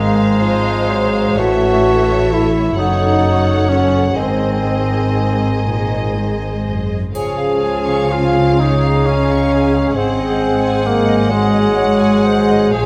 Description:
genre	classical, slow romantic movement for symphony orchestra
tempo	40-45 BPM (dotted quarters)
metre	6/8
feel	rubato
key	unclear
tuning	A4 = 440 Hz
part	rich studio violin section	melody	0.0-12.9 s	Eb5 to Gb5	-27 LUFS	equal	none
part	concert flute	second line	0.0-12.9 s	Gb5 to Bb5	-29 LUFS	equal	none
part	mellow clarinet	second line	0.0-12.9 s	C5 to Eb5	-28 LUFS	equal	none
part	mellow cor anglais	second line	0.0-12.9 s	Ab3 to Ab4	-26 LUFS	equal	none
part	rich studio violin section	second line	0.0-12.9 s	C5 to Db6	-31 LUFS	equal	none
part	rich studio viola section	accompaniment	0.0-12.9 s	Ab4 to C5	-28 LUFS	equal	none
part	warm bassoon	accompaniment	0.0-12.9 s	Eb3 to Ab3	-26 LUFS	equal	none
part	clear French horn section	sustained chords	0.0-12.9 s	Ab3 to Ab4	-20 LUFS	equal	none
part	clear studio double bass section	bass	0.0-12.9 s	Gb1 to Db2	-23 LUFS	equal	none
part	warm studio cello section	bass	0.0-12.9 s	Gb2 to Db3	-23 LUFS	equal	none
part	triangle	percussion	7.2-9.0 s	none	-46 LUFS	equal	none
room	moderate concert hall reverb, RT60 2.3 s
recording	none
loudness	-15 LUFS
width	mono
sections	0.0-12.9 A section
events	none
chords	0.0 Ab7; 1.4 A; 2.8 Gbm; 4.2 Ab; 7.1 Db; 10.0 Ab7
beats	| 1.38 2.77 | 4.17 5.66 | 7.15 8.59 | 9.96 11.30 | 12.74

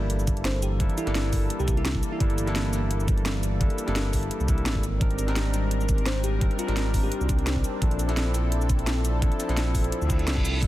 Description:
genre	liquid drum and bass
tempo	171 BPM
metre	4/4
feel	swing 54% on 16ths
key	G dorian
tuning	A4 = 440 Hz
part	barky tine electric piano	accompaniment	0.0-10.7 s	F3 to Bb4	-33 LUFS	left 1 dB	dub echo
part	lush unison pad	sustained chords	0.0-10.7 s	E3 to Bb4	-33 LUFS	equal	chorus, phaser, vintage 12-bit sampler grit, sidechain pumping
part	smooth synth bass	bass	0.0-10.7 s	G1 to D2	-26 LUFS	equal	none
part	sub drop and reverse cymbal	sound effects	0.0-0.8, 10.1-10.6 s	none	-35 LUFS	equal	none
part	drum and bass drum kit	drums	0.1-10.7 s	crash cymbal, hi-hat, shaker, snare drum	-32 LUFS	equal	overdrive
part	electronic kick drum	drums	0.3-10.7 s	none	-25 LUFS	equal	overdrive
part	bell-like FM electric piano	melody	0.5-2.5, 6.1-7.3 s	E4 to C5	-34 LUFS	left 1 dB	chorus, tape echo
room	light reverb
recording	dense, heavily limited modern master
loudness	-23 LUFS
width	side -15 dB against mid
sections	0.0-10.7 A section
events	impact 0.0-0.8; reverse cymbal 10.1-10.6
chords	0.0 Gm69; 4.8 Abmaj9#11; 7.8 Bbmaj9#11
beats	0.10 0.45 | 0.80 1.15 1.50 1.85 | 2.20 2.55 2.90 3.26 | 3.61 3.96 4.31 4.66 | 5.01 5.36 5.71 6.06 | 6.41 6.76 7.12 7.47 | 7.82 8.17 8.52 8.87 | 9.22 9.57 9.92 10.27 | 10.62

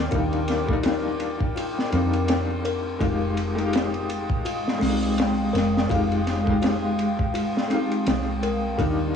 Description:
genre	trip hop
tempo	83 BPM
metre	4/4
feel	swing 57% on 16ths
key	F dorian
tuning	A4 = 441 Hz
part	felt-muted upright piano	accompaniment	0.0-9.2 s	G3 to G4	-27 LUFS	left 2 dB	tremolo, cassette tape, tape echo
part	warbly tape-like pad	sustained chords	0.0-9.2 s	Ab3 to Eb6	-29 LUFS	left 1 dB	chorus, built-in reverb, cassette tape
part	music box	arpeggios	0.0-9.0 s	C4 to Bb4	-30 LUFS	left 2 dB	cassette tape, tape echo
part	deep dub fingered electric bass	bass	0.0-9.2 s	F1 to F2	-28 LUFS	equal	none
part	crunchy breakbeat drum kit	drums	0.1-9.0 s	hi-hat, kick drum, ride cymbal, snare drum	-27 LUFS	equal	vintage 12-bit sampler grit, cassette tape
room	moderate booth ambience, RT60 0.2 s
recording	home recording on cassette, small room ambience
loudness	-21 LUFS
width	side -7 dB against mid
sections	0.0-9.2 A section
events	none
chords	0.0 Ebmaj7; 3.0 Fm9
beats	| 0.12 0.84 1.56 2.29 | 3.01 3.73 4.45 5.18 | 5.90 6.62 7.34 8.07 | 8.79

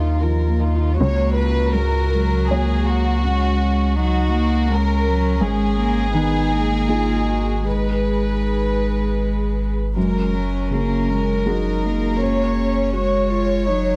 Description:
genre	neoclassical piano and strings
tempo	81 BPM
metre	3/4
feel	rubato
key	unclear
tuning	A4 = 437 Hz
part	clear studio violin section	melody	0.0-14.0 s	F4 to Db5	-26 LUFS	equal	none
part	clear cello	second line	0.0-14.0 s	Eb3 to Cb4	-26 LUFS	equal	none
part	felt-muted upright piano	accompaniment	0.0-14.0 s	Db2 to Db5	-28 LUFS	equal	none
part	warm viola	accompaniment	0.0-14.0 s	Db4 to Ab4	-30 LUFS	equal	none
part	warm sub bass	bass	0.0-14.0 s	Gb1 to Eb2	-24 LUFS	equal	none
room	light reverb, small room ambience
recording	dark, warm production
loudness	-20 LUFS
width	mono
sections	1.0-14.0 A section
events	none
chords	0.0 Ebsus2; 1.0 Dbsus4; 5.4 Abm; 10.0 Gbadd9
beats	0.20 | 0.98 1.73 2.48 | 3.22 3.95 4.68 | 5.41 6.15 6.89 | 7.65 8.42 9.19 | 9.96 10.72 11.46 | 12.20 12.94 13.66

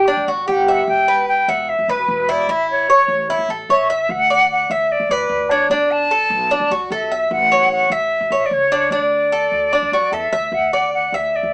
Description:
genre	latin, Cuban son and guajira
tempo	149 BPM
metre	4/4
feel	straight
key	D major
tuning	A4 = 438 Hz
part	silver concert flute	melody	0.0-11.5 s	B4 to A5	-17 LUFS	equal	none
part	Cuban tres	arpeggios	0.0-11.5 s	D4 to E5	-18 LUFS	equal	none
part	upright bass	bass	0.0-11.5 s	E1 to F#2	-32 LUFS	equal	none
room	moderate studio reverb, RT60 0.5 s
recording	band playing live in one room, small speaker sound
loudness	-14 LUFS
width	side -27 dB against mid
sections	0.0-11.5 A section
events	none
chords	0.0 G5; 0.9 Em; 2.5 A; 4.1 Dsus2; 5.7 Bm7; 7.3 A; 8.9 Dadd9; 10.5 Dsus2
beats	0.08 0.48 | 0.88 1.28 1.69 2.09 | 2.49 2.89 3.29 3.69 | 4.10 4.50 4.90 5.30 | 5.70 6.11 6.51 6.91 | 7.31 7.71 8.12 8.52 | 8.92 9.32 9.72 10.13 | 10.53 10.93 11.33

